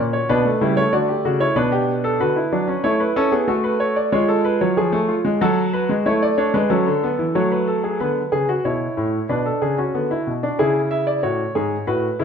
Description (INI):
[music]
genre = classical, baroque-style 4-part fugue for grand piano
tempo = 93 BPM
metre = 4/4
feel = straight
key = B minor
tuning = A4 = 440 Hz
[part]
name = clear concert grand piano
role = solo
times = 0.0-12.2 s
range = G#2 to E5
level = -17 LUFS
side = equal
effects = none
[sound]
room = moderate recital hall reverb, RT60 1.3 s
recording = none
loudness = -17 LUFS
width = side -7 dB against mid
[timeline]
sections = 0.0-8.0 A section; 8.0-12.2 B section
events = none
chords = 0.3 Bm; 2.8 F#m/A; 4.1 C#7; 5.4 F#m; 8.0 Bm; 9.3 G#dim/B; 10.6 C#m